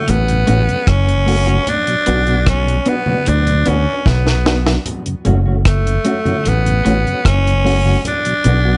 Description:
roots reggae; 75 BPM; 4/4; straight; F# minor; A4 = 440 Hz
raspy tenor saxophone; melody; 0.0-8.8 s; A3 to D4; -21 LUFS; equal; tape echo
clean electric guitar; riff; 0.1-8.7 s; F#2 to D3; -22 LUFS; equal; phaser
fingered electric bass; bass; 0.1-8.8 s; F#1 to D2; -18 LUFS; equal
deep reggae drum kit; drums; 0.1-8.6 s; hi-hat, kick drum, rim click, snare drum; -20 LUFS; equal
congas; percussion; 0.1-8.6 s; -29 LUFS; equal
mellow tonewheel organ; accompaniment; 0.3-8.7 s; F#2 to F#4; -26 LUFS; equal
mellow electric guitar; accompaniment; 0.5-8.7 s; A3 to F#4; -25 LUFS; equal; vibrato effect, tape echo
light reverb; nothing above 11.0 kHz; -15 LUFS; mono
0.0-8.8 A section
drum fill 4.1-4.9
0.0 F#m; 1.7 Bm; 4.9 F#m; 8.0 Bm
0.07 0.87 | 1.67 2.47 3.26 4.06 | 4.86 5.66 6.45 7.25 | 8.05

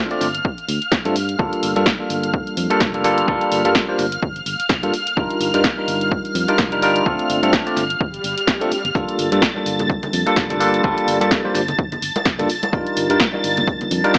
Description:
filtered disco house; 127 BPM; 4/4; swing 56% on 16ths; G minor; A4 = 443 Hz
barky tine electric piano; accompaniment; 0.0-14.2 s; G3 to D5; -22 LUFS; equal; phaser, sidechain pumping
string machine, full ensemble; sustained chords; 0.0-14.2 s; F6 to A6; -27 LUFS; equal; ensemble chorus, sidechain pumping
punchy analog drum machine; drums; 0.1-14.2 s; hi-hat, snare drum; -24 LUFS; equal; sidechain pumping on cymbals, sidechain pumping on hats
fingered electric bass; bass; 0.2-14.2 s; F1 to G2; -29 LUFS; equal; tube saturation, sidechain pumping
electronic kick drum; drums; 0.4-14.2 s; -25 LUFS; equal
swell; sound effects; 8.1-9.0 s; -31 LUFS; equal
maracas and congas; percussion; 9.0-14.2 s; -31 LUFS; equal; sidechain pumping on perc
light reverb; AM radio sound; -19 LUFS; mono
0.0-14.2 A section
swell 8.1-9.0
0.0 Dm7/G; 1.4 Gm7; 5.2 Ebmaj9/G; 7.1 Dm7/G; 9.0 Gm7; 12.7 Ebmaj9/G
0.45 0.92 | 1.39 1.86 2.34 2.81 | 3.28 3.75 4.23 4.70 | 5.17 5.64 6.12 6.59 | 7.06 7.53 8.01 8.48 | 8.95 9.42 9.90 10.37 | 10.84 11.31 11.79 12.26 | 12.73 13.20 13.68 14.15

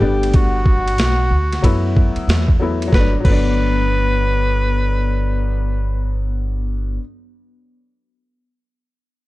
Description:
hip hop, jazz-hop; 93 BPM; 4/4; swing 64% on 16ths; G major; A4 = 440 Hz
breathy alto saxophone; melody; 0.0-6.3 s; F#4 to B4; -22 LUFS; equal
vibraphone with soft mallets; second line; 0.0-7.0 s; B3 to G5; -29 LUFS; left 8 dB
warm upright piano; accompaniment; 0.0-7.0 s; F#3 to E4; -24 LUFS; left 3 dB
upright bass; bass; 0.0-7.0 s; G1 to F#2; -19 LUFS; equal
boom bap sampler-style drum kit; drums; 0.2-3.5 s; crash cymbal, hi-hat, kick drum, ride cymbal, snare drum; -17 LUFS; equal
little or no reverb; dark, warm production; -15 LUFS; side -18 dB against mid
0.0-2.9 A section; 2.9-5.5 B section
0.0 Gmaj7
| 0.34 0.99 1.64 2.28 | 2.92 3.57 4.22 4.86

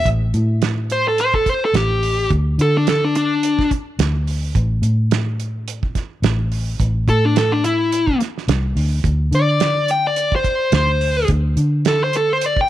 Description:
straight-eighth soul blues; 107 BPM; 4/4; swing 56% on 16ths; A4 = 441 Hz
dark smooth lead guitar; melody; 0.0-3.7, 7.1-12.7 s; D4 to G5; -18 LUFS; left 1 dB; overdrive
vintage muted fingered electric bass; bass; 0.0-12.7 s; A1 to D3; -19 LUFS; equal
cloth-damped thuddy drum kit; drums; 0.1-12.7 s; hi-hat, kick drum, snare drum; -22 LUFS; right 4 dB
small room ambience; 1960s-style stereo; -16 LUFS; side -13 dB against mid
0.1-12.7 A section
lead electric guitar solo 0.1-12.7
0.1 A7(no3); 2.3 D5; 4.5 N.C.; 9.0 D7(no3)
| 0.06 0.62 1.18 1.74 | 2.30 2.86 3.42 3.99 | 4.55 5.11 5.67 6.23 | 6.79 7.36 7.92 8.48 | 9.04 9.60 10.16 10.72 | 11.29 11.85 12.41

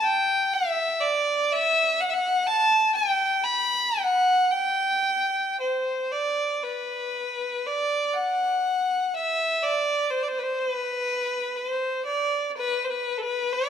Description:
celtic folk; 37-42 BPM (dotted quarters); 6/8; rubato; A4 = 437 Hz
clear fiddle; solo; 0.0-13.7 s; A4 to B5; -22 LUFS; equal
moderate scoring stage reverb, RT60 1.8 s; minimal, uncompressed stereo recording; -22 LUFS; side -8 dB against mid
0.0-6.1 A section; 6.1-13.7 B section
| 0.05 1.53 | 3.01 4.55 | 6.12 7.66 | 9.16 10.61 | 12.05 13.53

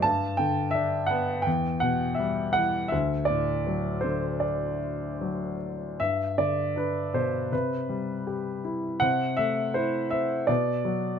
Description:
classical, lyrical solo piano; 75-85 BPM; 4/4; rubato; G major; A4 = 440 Hz
warm grand piano; solo; 0.0-11.2 s; D2 to A5; -25 LUFS; equal
little or no reverb; close, detailed microphones; -25 LUFS; side -7 dB against mid
0.0-11.2 A section
0.0 G; 1.5 Em; 2.9 D; 6.0 G; 7.5 C; 9.0 Am/C; 10.5 Bm
| 0.04 0.75 1.47 2.19 | 2.93 3.67 4.43 5.22 | 6.00 6.76 7.52 8.27 | 9.02 9.76 10.49

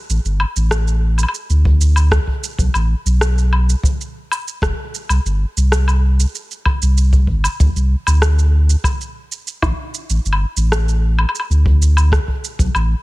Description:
folktronica; 96 BPM; 4/4; straight; A4 = 442 Hz
warm sub bass; bass; 0.1-12.9 s; F#1 to D2; -13 LUFS; equal
electronic shaker, woodblock and rim click; drums; 0.1-12.9 s; -22 LUFS; equal
kick drum; drums; 1.7-12.7 s; -18 LUFS; equal
studio ambience; -14 LUFS; side -20 dB against mid
0.0-13.0 A section
| 0.09 0.72 1.34 1.97 | 2.59 3.22 3.84 4.47 | 5.09 5.72 6.34 6.97 | 7.59 8.22 8.84 9.47 | 10.09 10.72 11.34 11.97 | 12.59

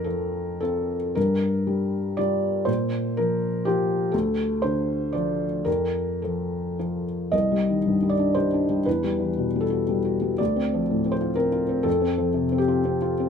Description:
neoclassical minimalist piano; 107-127 BPM; 3/4; rubato; A4 = 440 Hz
felt-muted upright piano; solo; 0.0-13.3 s; C2 to Eb5; -22 LUFS; left 1 dB
moderate studio reverb, RT60 0.8 s; minimal, uncompressed stereo recording; -22 LUFS; side -7 dB against mid
0.0-7.3 A section; 7.3-13.3 B section
0.0 F; 1.2 Gm7; 2.7 Bb5; 4.1 Dm; 5.7 N.C.; 7.3 Cmadd9; 8.9 Emadd9; 10.4 Dm7; 11.9 Fsus2
0.06 0.61 | 1.16 1.67 2.18 | 2.68 3.18 3.66 | 4.13 4.63 5.13 | 5.67 6.22 6.78 | 7.33 7.84 8.36 | 8.86 9.36 9.87 | 10.40 10.89 11.37 | 11.86 12.36 12.85

